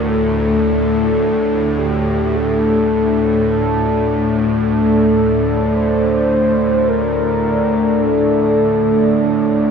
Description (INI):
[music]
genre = dark ambient drone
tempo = 53 BPM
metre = 4/4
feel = straight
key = unclear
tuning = A4 = 439 Hz
[part]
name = mellow horn-like synth lead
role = melody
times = 0.0-9.7 s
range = G4 to C5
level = -18 LUFS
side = equal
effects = chorus, shimmer reverb, analog delay
[part]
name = deep dark ambient pad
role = sustained chords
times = 0.0-9.7 s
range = A3 to D5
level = -16 LUFS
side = equal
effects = chorus, built-in reverb
[part]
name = bowed-like drone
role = drone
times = 0.0-9.7 s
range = D2 to A2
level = -21 LUFS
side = right 1 dB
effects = built-in reverb
[sound]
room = wet cathedral reverb, RT60 4.7 s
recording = dreamy mix soaked in reverb, cassette tape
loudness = -13 LUFS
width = side -6 dB against mid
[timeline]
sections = 0.0-9.7 A section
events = none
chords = 0.0 D5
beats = | 0.09 1.22 2.35 3.48 | 4.62 5.75 6.88 8.01 | 9.14